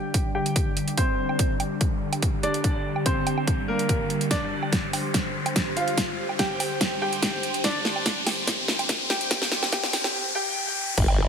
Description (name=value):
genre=heavy wobble dubstep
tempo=144 BPM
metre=4/4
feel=half-time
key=unclear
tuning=A4 = 440 Hz
part: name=clear baby grand piano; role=melody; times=0.0-10.9 s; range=Bb3 to G5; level=-29 LUFS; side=equal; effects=low-pass filter, digital delay
part: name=lush unison pad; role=sustained chords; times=0.0-11.3 s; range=D3 to D5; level=-30 LUFS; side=equal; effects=chorus, phaser, sidechain pumping
part: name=riser and impact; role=sound effects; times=0.0-11.3 s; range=none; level=-30 LUFS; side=left 1 dB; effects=none
part: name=dubstep drum kit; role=drums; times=0.1-11.2 s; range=crash cymbal, hi-hat, snare drum, woodblock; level=-27 LUFS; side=right 1 dB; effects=none
part: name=electronic kick drum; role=drums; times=0.1-11.1 s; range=none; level=-26 LUFS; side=equal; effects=none
part: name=formant-sweep wobble bass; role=bass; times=11.0-11.3 s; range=G1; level=-22 LUFS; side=equal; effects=chorus, overdrive
room=moderate lush hall reverb, RT60 1.7 s, digital ambience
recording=high-pass filter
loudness=-22 LUFS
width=side -7 dB against mid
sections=0.0-11.0 A section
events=build-up 0.0-11.0; riser 0.0-11.0; filter sweep on analog synth pad 0.0-11.0; filter sweep on grand piano 0.0-11.0; filter sweep 0.0-11.0; drum fill 4.3-10.1; impact 11.0-11.3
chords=0.0 G5